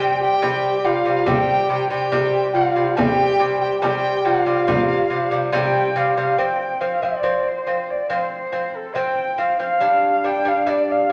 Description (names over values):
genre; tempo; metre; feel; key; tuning
mongolian traditional, Mongolian folk; 70 BPM; 4/4; straight; unclear; A4 = 440 Hz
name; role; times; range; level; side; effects
dark horsehead fiddle; melody; 0.0-11.1 s; F4 to G5; -24 LUFS; equal; none
mellow large dizi; second line; 0.0-6.0 s; F5 to A5; -24 LUFS; equal; none
lute; arpeggios; 0.0-11.1 s; C3 to D4; -23 LUFS; equal; none
frame drum; percussion; 0.4-6.3 s; none; -28 LUFS; equal; none
room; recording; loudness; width
wet large studio reverb, RT60 1.4 s; none; -20 LUFS; mono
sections
0.0-6.4 A section; 6.4-11.1 B section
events
none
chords
0.0 C5; 6.4 F5; 9.8 G5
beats
0.42 1.27 2.12 | 2.97 3.83 4.68 5.53 | 6.39 7.25 8.10 8.96 | 9.82 10.68